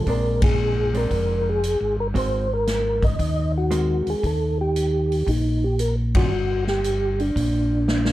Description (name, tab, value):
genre	soul jazz organ trio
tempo	115 BPM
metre	4/4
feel	swing 68% on 8ths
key	unclear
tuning	A4 = 440 Hz
part	percussive tonewheel organ	melody	0.0-8.1 s	D4 to Eb5	-23 LUFS	equal	slow rotary speaker, chorus vibrato
part	hollow-body jazz guitar	accompaniment	0.0-6.3 s	Eb3 to Bb4	-29 LUFS	right 3 dB	none
part	tonewheel organ	bass	0.0-8.1 s	F1 to Eb2	-23 LUFS	equal	slow rotary speaker
part	swinging big-band drum kit	drums	0.1-8.1 s	hi-hat, kick drum, ride cymbal, snare drum	-26 LUFS	equal	none
room	little or no reverb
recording	dark, warm production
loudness	-19 LUFS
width	side -15 dB against mid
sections	0.0-8.1 A section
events	band accent 0.3, 6.1; drum fill 7.9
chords	0.1 Bb9; 2.2 Ab9; 4.2 Eb; 7.4 Bb